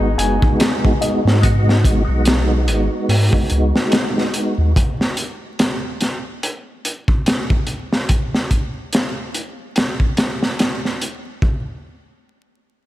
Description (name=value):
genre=trip hop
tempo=72 BPM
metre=4/4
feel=swing 57% on 16ths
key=G# minor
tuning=A4 = 440 Hz
part: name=percussive tonewheel organ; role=accompaniment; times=0.0-4.7 s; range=G#3 to F#4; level=-21 LUFS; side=equal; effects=chorus vibrato, fast rotary speaker, tremolo, tape echo
part: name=felt-muted upright piano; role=arpeggios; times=0.0-1.5 s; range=D#4 to G#5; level=-24 LUFS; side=left 2 dB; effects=low-pass filter, tape echo
part: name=warm sub bass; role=bass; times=0.0-4.7 s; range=F#1 to G#2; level=-16 LUFS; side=equal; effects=tube saturation
part: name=crunchy breakbeat drum kit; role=drums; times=0.2-11.6 s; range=hi-hat, kick drum, snare drum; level=-18 LUFS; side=equal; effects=gated reverb
room=light reverb, studio ambience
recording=bright 1980s-style digital production, vinyl crackle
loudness=-16 LUFS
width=side -15 dB against mid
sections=0.0-11.4 A section; 11.4-12.9 B section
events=filter sweep on felt piano 0.0-1.4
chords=0.0 G#m7; 4.8 N.C.